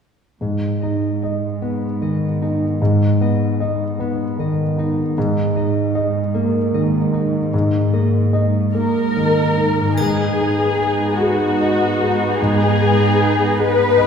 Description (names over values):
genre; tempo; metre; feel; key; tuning
cinematic, emotional film score for orchestra; 50 BPM (dotted quarters); 6/8; rubato; G# minor; A4 = 435 Hz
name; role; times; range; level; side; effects
warm grand piano; accompaniment; 0.4-14.1 s; G#2 to D#5; -19 LUFS; equal; none
concert harp; arpeggios; 0.4-13.8 s; G#2 to D#5; -24 LUFS; left 2 dB; none
muted symphonic cello section; bass; 0.4-14.1 s; G#2; -24 LUFS; right 3 dB; none
muted symphonic violin section; second line; 8.7-14.1 s; F#4 to B4; -18 LUFS; left 3 dB; none
muted symphonic viola section; accompaniment; 10.0-14.1 s; B3 to D#4; -22 LUFS; right 3 dB; none
triangle; percussion; 10.0-11.5 s; none; -36 LUFS; equal; none
room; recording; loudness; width
wet concert hall reverb, RT60 2.1 s; heard from further back in the room; -16 LUFS; side -7 dB against mid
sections
0.4-10.0 A section; 10.0-14.1 B section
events
none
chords
0.4 G#m; 5.2 D#sus4/G#; 10.0 G#m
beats
| 0.41 1.61 | 2.79 3.99 | 5.16 6.34 | 7.53 8.75 | 9.98 11.19 | 12.38 13.57